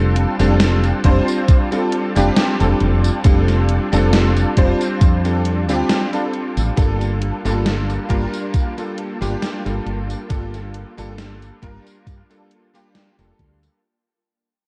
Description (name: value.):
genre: vaporwave.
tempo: 68 BPM.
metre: 4/4.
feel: swing 54% on 16ths.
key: G minor.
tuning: A4 = 442 Hz.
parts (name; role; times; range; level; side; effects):
bright electric grand piano; accompaniment; 0.0-13.8 s; G3 to C5; -22 LUFS; equal; ensemble chorus, vintage 12-bit sampler grit, tape echo.
soft string machine; sustained chords; 0.0-13.8 s; Bb3 to A5; -34 LUFS; equal; ensemble chorus, vintage 12-bit sampler grit.
woody fretless electric bass; bass; 0.0-13.7 s; F1 to G2; -21 LUFS; equal; none.
gated 80s digital drum machine; drums; 0.2-13.8 s; hi-hat, snare drum, tambourine; -25 LUFS; equal; gated reverb, gated reverb snare, studio reverb.
electronic kick drum; drums; 1.0-13.6 s; none; -17 LUFS; equal; studio reverb.
room: light reverb, digital ambience.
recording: dark, warm production, cassette tape.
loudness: -18 LUFS.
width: mono.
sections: 0.0-13.8 A section.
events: fade-out 4.4-13.8.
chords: 0.0 F69; 6.8 Gm9.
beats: 0.60 1.48 2.37 | 3.25 4.13 5.01 5.89 | 6.78 7.66 8.54 9.42 | 10.31 11.19 12.07 12.95.